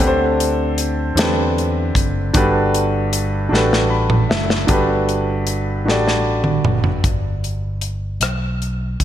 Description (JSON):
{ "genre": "slow gospel", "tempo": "51 BPM (dotted quarters)", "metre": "6/8", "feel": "straight", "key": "G major", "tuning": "A4 = 442 Hz", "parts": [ { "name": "warm concert grand piano", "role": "accompaniment", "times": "0.0-7.1 s", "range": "G2 to B5", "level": "-18 LUFS", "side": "equal", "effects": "slapback echo" }, { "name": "fingered electric bass", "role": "bass", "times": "0.0-9.0 s", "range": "F1 to E2", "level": "-21 LUFS", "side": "equal", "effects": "none" }, { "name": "modern studio drum kit", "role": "drums", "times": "0.0-9.0 s", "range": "hi-hat, kick drum, rim click, snare drum, toms", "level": "-19 LUFS", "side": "equal", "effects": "none" } ], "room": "moderate lush hall reverb, RT60 2.7 s", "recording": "big arena sound", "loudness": "-16 LUFS", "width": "side -11 dB against mid", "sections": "0.0-4.7 A section; 4.7-7.0 B section; 7.0-9.0 C section", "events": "drum fill 3.5-4.7, 5.9-7.0; grand piano fill 3.5-4.7", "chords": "0.0 D7sus4; 2.3 Gmaj9; 7.0 N.C." }